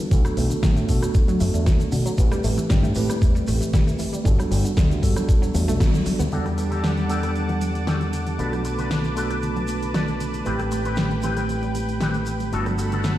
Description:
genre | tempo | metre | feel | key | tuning
nu-disco, nu disco | 116 BPM | 4/4 | straight | E minor | A4 = 440 Hz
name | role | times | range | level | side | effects
mellow tine electric piano | accompaniment | 0.0-13.2 s | G3 to F#5 | -27 LUFS | right 1 dB | medium stereo tremolo, sidechain pumping, ping-pong delay
wide unison pluck | arpeggios | 0.0-13.1 s | D3 to B3 | -30 LUFS | left 1 dB | sidechain pumping, ping-pong delay
pop drum kit | drums | 0.0-13.2 s | cabasa, hi-hat, rim click, snare drum | -29 LUFS | left 1 dB | studio reverb
tube shaker | percussion | 0.0-13.1 s | none | -42 LUFS | right 3 dB | none
fingered electric bass with an envelope filter | bass | 0.1-13.2 s | G1 to B2 | -25 LUFS | equal | none
electronic kick drum | drums | 0.1-5.9 s | none | -19 LUFS | equal | studio reverb
lush unison pad | sustained chords | 6.3-13.2 s | G3 to D6 | -31 LUFS | right 1 dB | chorus, sidechain pumping
electric guitar with an envelope filter | riff | 6.3-13.1 s | B3 to B4 | -32 LUFS | left 4 dB | ensemble chorus, low-pass filter, ping-pong delay
room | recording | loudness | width
moderate echo chamber reverb, RT60 1.9 s | played on a big sound system in a bare room, stone room reverb | -19 LUFS | side -14 dB against mid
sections
0.0-6.3 A section; 6.3-13.2 B section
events
band accent 5.8; filter sweep on clean electric guitar 6.3-13.2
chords
0.1 Bm7; 2.2 Am9; 4.3 Gmaj9; 6.3 Em11; 8.4 Bm7; 10.5 Am9; 12.5 Gmaj9

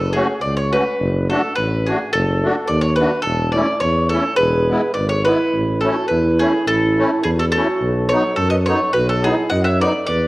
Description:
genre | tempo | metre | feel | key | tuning
alpine folk, alpine dance band | 106 BPM | 2/4 | swing 53% on 8ths | A major | A4 = 440 Hz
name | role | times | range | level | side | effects
bowl-back mandolin | melody | 0.0-10.3 s | G#4 to F#5 | -19 LUFS | equal | none
mellow tuba | bass | 0.0-10.3 s | E1 to F#2 | -20 LUFS | equal | none
musette accordion | accompaniment | 0.1-9.9 s | F#3 to F#4 | -22 LUFS | left 1 dB | none
dark clarinet | second line | 4.4-10.3 s | E4 to D#5 | -22 LUFS | right 2 dB | none
room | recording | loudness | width
wet recital hall reverb, RT60 1.4 s | worn, warbling old tape, cassette tape, warbly pitch drift | -15 LUFS | side -19 dB against mid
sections
0.0-10.3 A section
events
none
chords
0.0 F#m; 1.0 D/F#; 3.2 A/E; 4.4 E; 5.5 A; 7.8 B

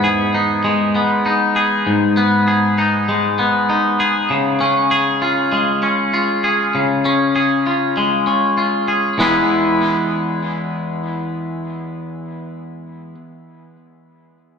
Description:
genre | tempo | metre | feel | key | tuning
rock | 98 BPM | 4/4 | straight | E major | A4 = 438 Hz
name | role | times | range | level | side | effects
twangy electric guitar | arpeggios | 0.0-13.2 s | E2 to G#4 | -15 LUFS | left 1 dB | tape echo, slapback echo
room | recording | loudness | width
wet concert hall reverb, RT60 2.0 s | big arena sound | -14 LUFS | side -6 dB against mid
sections
0.0-9.2 A section; 9.2-11.6 B section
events
none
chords
0.0 G#m; 4.3 C#; 9.2 E

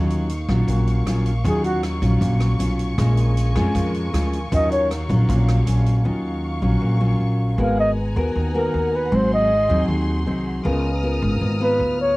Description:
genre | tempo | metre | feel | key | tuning
bossa nova | 156 BPM | 4/4 | straight | Eb minor | A4 = 441 Hz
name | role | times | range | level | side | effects
nylon-string guitar | accompaniment | 0.0-12.2 s | Ab2 to Bb4 | -23 LUFS | left 1 dB | cassette tape
warm studio string section | sustained chords | 0.0-12.2 s | Gb3 to F6 | -33 LUFS | left 1 dB | cassette tape
upright bass | bass | 0.0-12.2 s | Ab1 to F2 | -20 LUFS | equal | none
swinging big-band drum kit | drums | 0.1-5.9 s | hi-hat, kick drum, rim click | -30 LUFS | equal | cassette tape
breathy flugelhorn | melody | 1.5-1.8, 4.5-4.9, 7.6-12.2 s | Gb4 to F5 | -20 LUFS | equal | cassette tape
room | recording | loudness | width
little or no reverb | home recording on cassette | -18 LUFS | side -21 dB against mid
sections
0.0-6.0 A section; 6.0-12.2 A section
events
flugelhorn solo 0.0-12.2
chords
0.0 Ebm9; 3.0 Bbm7; 4.5 Ebm9; 7.6 Abm9; 9.1 Ab7; 10.6 Db13

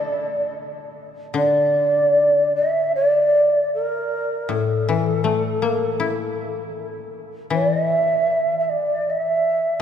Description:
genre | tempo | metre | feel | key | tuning
japanese traditional, Japanese chamber music | 72-82 BPM | 4/4 | rubato | unclear | A4 = 440 Hz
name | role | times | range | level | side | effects
mellow hollow shakuhachi | melody | 0.0-9.8 s | A4 to E5 | -19 LUFS | equal | none
koto | accompaniment | 0.0-9.8 s | A2 to A4 | -25 LUFS | left 5 dB | none
room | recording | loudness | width
wet cathedral reverb, RT60 5.0 s | minimal, uncompressed stereo recording | -18 LUFS | side -8 dB against mid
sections
0.0-1.4 A section; 1.4-9.8 B section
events
none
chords
none

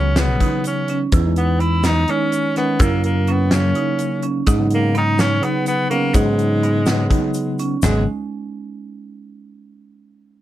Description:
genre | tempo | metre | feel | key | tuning
progressive instrumental, band music in an uneven meter | 251 BPM (eighths) | 7/8 | straight | G# minor | A4 = 444 Hz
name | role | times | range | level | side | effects
bright tenor saxophone | melody | 0.0-8.0 s | G#3 to E4 | -22 LUFS | equal | none
barky tine electric piano | accompaniment | 0.0-8.1 s | C#3 to D#4 | -23 LUFS | left 3 dB | fast stereo tremolo
marimba with hard mallets | arpeggios | 0.0-8.1 s | G#3 to E4 | -25 LUFS | right 8 dB | none
picked electric bass | bass | 0.0-8.1 s | G#1 to G#2 | -18 LUFS | equal | none
gated 80s drum kit | drums | 0.2-7.9 s | china cymbal, hi-hat, kick drum, snare drum, toms | -20 LUFS | equal | none
tube shaker | percussion | 0.2-8.0 s | none | -35 LUFS | left 8 dB | none
room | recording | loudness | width
light reverb | none | -16 LUFS | side -13 dB against mid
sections
0.0-7.8 A section; 7.8-9.5 B section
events
none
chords
0.0 C#7(no3); 1.1 E; 2.8 F#7; 4.5 G#m7

